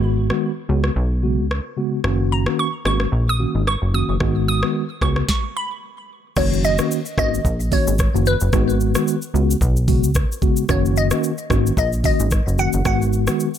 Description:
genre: afrobeats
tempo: 111 BPM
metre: 4/4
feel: swing 58% on 16ths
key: F# major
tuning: A4 = 441 Hz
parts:
  - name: glassy wavetable pluck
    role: melody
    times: 0.0-13.6 s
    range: B4 to D#6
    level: -25 LUFS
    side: equal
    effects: chorus, digital delay
  - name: mellow tine electric piano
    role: accompaniment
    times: 0.0-13.5 s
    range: C#3 to F#4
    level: -22 LUFS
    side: equal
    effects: medium stereo tremolo
  - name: plucky analog bass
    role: bass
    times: 0.0-13.3 s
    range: F#1 to C#2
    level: -20 LUFS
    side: equal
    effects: none
  - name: afro-pop drum kit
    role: drums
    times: 0.3-13.6 s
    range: crash cymbal, hi-hat, kick drum, rim click, shaker, snare drum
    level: -22 LUFS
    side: equal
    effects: none
room: digital ambience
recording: none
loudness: -17 LUFS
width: side -10 dB against mid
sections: 0.0-6.4 A section; 6.4-13.6 B section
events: stop 5.3-6.4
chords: 0.0 G#m7; 0.7 C#7sus4; 2.0 F#6; 4.2 G#m7; 5.0 C#7sus4; 6.4 F#6; 8.5 G#m7; 9.3 C#7sus4; 10.7 F#6; 12.9 G#m7

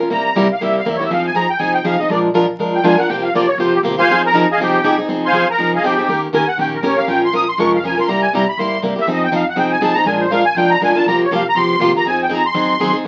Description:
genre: acoustic string swing (jazz manouche)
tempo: 241 BPM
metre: 4/4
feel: swing 57% on 8ths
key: F minor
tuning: A4 = 440 Hz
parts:
  - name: picked plugged-in old ladder-braced acoustic guitar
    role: accompaniment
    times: 0.0-13.1 s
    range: C3 to Bb4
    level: -19 LUFS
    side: equal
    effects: none
  - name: musette accordion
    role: melody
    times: 0.1-13.0 s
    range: G4 to Eb6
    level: -18 LUFS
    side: equal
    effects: none
  - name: upright bass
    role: bass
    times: 0.1-13.1 s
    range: F1 to Ab2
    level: -36 LUFS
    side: equal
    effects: none
room: moderate studio reverb, RT60 0.5 s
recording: very old 78 rpm record, vinyl crackle, nothing above 7.6 kHz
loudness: -16 LUFS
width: mono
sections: 0.0-5.1 A section; 5.1-13.1 A section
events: accordion solo 0.0-13.1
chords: 0.1 C7; 1.1 Fm7; 2.1 Bb7; 3.1 C7sus4; 4.1 Fm7; 6.1 Eb7; 7.1 Bbm7; 8.1 C7; 9.1 Fm7; 10.1 Bb7; 11.1 C7sus4; 12.1 Fm7; 12.6 Ab7

